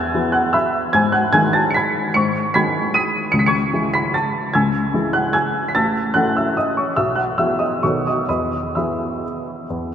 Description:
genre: classical, piano waltz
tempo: 125-159 BPM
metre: 3/4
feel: rubato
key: E major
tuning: A4 = 444 Hz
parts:
  - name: warm upright piano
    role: solo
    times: 0.0-9.9 s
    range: A1 to D#7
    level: -16 LUFS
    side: equal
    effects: none
room: wet cathedral reverb, RT60 5.0 s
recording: in a vast, echoing space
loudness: -16 LUFS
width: side -9 dB against mid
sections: 0.0-9.9 A section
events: none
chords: 0.0 E; 0.9 G#m; 3.3 C#m; 5.7 A; 7.0 E/B; 7.8 B9; 8.3 E

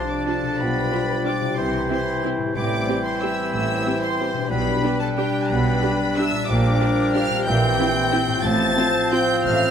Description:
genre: classical, orchestral ballroom waltz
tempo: 183 BPM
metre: 3/4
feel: uneven beats, rubato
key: F major from 6.5 s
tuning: A4 = 438 Hz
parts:
  - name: bright studio violin section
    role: melody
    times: 0.0-9.7 s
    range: G5 to A6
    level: -28 LUFS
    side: equal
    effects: none
  - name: bright clarinet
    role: second line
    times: 0.0-9.7 s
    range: C4 to E4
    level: -30 LUFS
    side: equal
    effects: none
  - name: clear oboe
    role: second line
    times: 0.0-9.7 s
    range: Bb4 to D5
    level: -30 LUFS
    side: equal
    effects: none
  - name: mellow silver concert flute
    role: second line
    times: 0.0-9.7 s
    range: F5 to A5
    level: -32 LUFS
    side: left 1 dB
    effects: none
  - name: warm studio violin section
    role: second line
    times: 0.0-9.7 s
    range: G4 to A5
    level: -30 LUFS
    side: left 2 dB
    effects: none
  - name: clear bassoon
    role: accompaniment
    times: 0.0-9.7 s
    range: E3 to G3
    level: -28 LUFS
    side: right 3 dB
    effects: none
  - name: warm French horn section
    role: sustained chords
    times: 0.0-9.7 s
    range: E3 to F4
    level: -28 LUFS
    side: left 3 dB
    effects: none
  - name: concert harp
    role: arpeggios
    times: 0.0-9.7 s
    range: A2 to F5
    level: -29 LUFS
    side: left 9 dB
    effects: none
  - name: rich studio viola section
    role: accompaniment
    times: 0.3-9.2 s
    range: C4 to G4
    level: -28 LUFS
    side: right 1 dB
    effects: none
  - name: rich studio cello section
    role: bass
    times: 0.6-9.7 s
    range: A2 to C3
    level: -28 LUFS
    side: right 2 dB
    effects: none
  - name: rich studio double bass section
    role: bass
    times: 0.6-9.7 s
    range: A1 to C2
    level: -28 LUFS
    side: right 3 dB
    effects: none
room: moderate scoring stage reverb, RT60 1.9 s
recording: close, detailed microphones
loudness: -19 LUFS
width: side -8 dB against mid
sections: 0.0-9.7 A section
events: none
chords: 0.0 Dm7/C; 0.6 G7/B; 1.6 C; 2.6 Am7; 4.5 G/B; 6.5 Gm7/Bb; 7.5 C7/Bb; 8.4 F/A

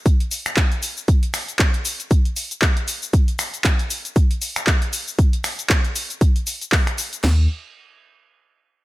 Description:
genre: deep house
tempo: 117 BPM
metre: 4/4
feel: swing 57% on 16ths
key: unclear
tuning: A4 = 440 Hz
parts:
  - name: house drum kit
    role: drums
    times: 0.1-7.4 s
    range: crash cymbal, kick drum, snare drum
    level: -17 LUFS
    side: equal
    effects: none
  - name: punchy analog drum machine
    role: drums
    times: 0.1-7.2 s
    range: finger snaps, handclaps, hi-hat, shaker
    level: -23 LUFS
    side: equal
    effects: none
  - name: sub bass with octave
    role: bass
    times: 7.2-7.5 s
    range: Eb2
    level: -15 LUFS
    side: equal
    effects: sidechain pumping
room: little or no reverb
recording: none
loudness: -18 LUFS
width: side -18 dB against mid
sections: 0.0-7.2 A section; 7.2-8.8 B section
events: none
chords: none

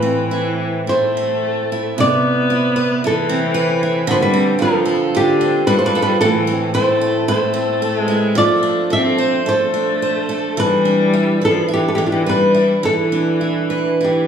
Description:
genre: celtic folk, Celtic slow air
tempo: 49-58 BPM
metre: 4/4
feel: rubato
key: A minor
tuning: A4 = 440 Hz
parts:
  - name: flamenco guitar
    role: melody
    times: 0.0-14.3 s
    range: F4 to E5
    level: -18 LUFS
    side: left 1 dB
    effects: none
  - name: clear viola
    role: second line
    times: 0.0-14.3 s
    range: D3 to C4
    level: -19 LUFS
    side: left 3 dB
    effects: none
  - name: picked steel-string acoustic guitar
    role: accompaniment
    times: 0.0-14.3 s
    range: A2 to C5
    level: -19 LUFS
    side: right 4 dB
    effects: none
room: moderate concert hall reverb, RT60 2.0 s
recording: studio reverb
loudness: -14 LUFS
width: side -8 dB against mid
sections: 0.0-14.3 A section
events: none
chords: 0.0 Amadd9; 2.0 Cmaj7; 4.1 Dm7; 6.2 Am; 10.6 E5

